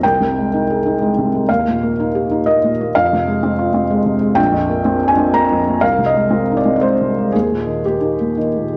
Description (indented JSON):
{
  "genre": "neoclassical minimalist piano",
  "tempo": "123 BPM",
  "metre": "3/4",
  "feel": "rubato",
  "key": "unclear",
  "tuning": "A4 = 440 Hz",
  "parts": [
    { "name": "felt-muted upright piano", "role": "solo", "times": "0.0-8.8 s", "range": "Bb1 to Bb5", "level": "-16 LUFS", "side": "equal", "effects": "slapback echo" }
  ],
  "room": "moderate plate reverb, RT60 3.6 s",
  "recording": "worn, warbling old tape, cassette tape, warbly pitch drift",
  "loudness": "-16 LUFS",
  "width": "mono",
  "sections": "0.0-8.8 A section",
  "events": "none",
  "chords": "0.0 Ab/C; 1.5 Eb; 2.9 Fm; 4.4 Bbadd9; 5.8 Ab/C; 7.3 Eb"
}